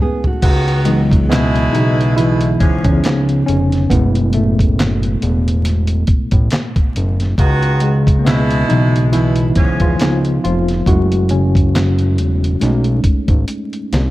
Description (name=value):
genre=R&B, neo-soul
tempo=69 BPM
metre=4/4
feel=swing 58% on 16ths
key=C# minor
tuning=A4 = 440 Hz
part: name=nylon-string guitar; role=second line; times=0.0-0.7 s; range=A3 to G#4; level=-22 LUFS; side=right 3 dB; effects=none
part: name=tine electric piano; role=accompaniment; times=0.0-14.1 s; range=A2 to G#4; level=-17 LUFS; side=equal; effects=overdrive, fast stereo tremolo
part: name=dusty soul sampler-style drum kit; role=drums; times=0.2-14.1 s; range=crash cymbal, handclaps, hi-hat, kick drum, snare drum, toms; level=-16 LUFS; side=equal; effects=none
part: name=warm saxophone section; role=stabs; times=0.4-10.2 s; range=G#2 to F#4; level=-21 LUFS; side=right 1 dB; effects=slapback echo
part: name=fat analog bass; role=bass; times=0.4-14.1 s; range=E1 to E2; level=-16 LUFS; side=equal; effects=none
room=digital ambience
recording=dark, warm production, vinyl crackle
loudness=-12 LUFS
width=side -16 dB against mid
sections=0.4-14.1 A section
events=drum fill 0.0-0.4, 13.5-14.1; stop 0.0-0.4; tine electric piano solo 0.4-14.1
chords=0.4 C#m11; 3.0 C#7; 3.9 F#m9; 7.4 C#m11; 10.0 C#7; 10.9 F#m9; 12.6 B13